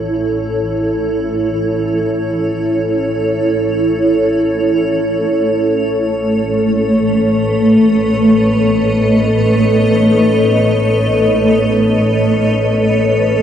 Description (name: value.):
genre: ambient.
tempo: free time.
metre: none.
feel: none.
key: unclear.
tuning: A4 = 440 Hz.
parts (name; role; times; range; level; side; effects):
granular cloud pad; sustained chords; 0.0-13.4 s; A3 to D#5; -12 LUFS; equal; built-in reverb, shimmer reverb.
dark chamber double bass section; bass; 0.0-13.4 s; A1; -21 LUFS; equal; none.
room: wet spring reverb, RT60 2.8 s.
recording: none.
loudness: -12 LUFS.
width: side -9 dB against mid.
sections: 0.0-13.4 A section.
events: fade-in on double bass section 0.0-13.4.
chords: 0.0 A; 5.3 Badd9/A.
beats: free time.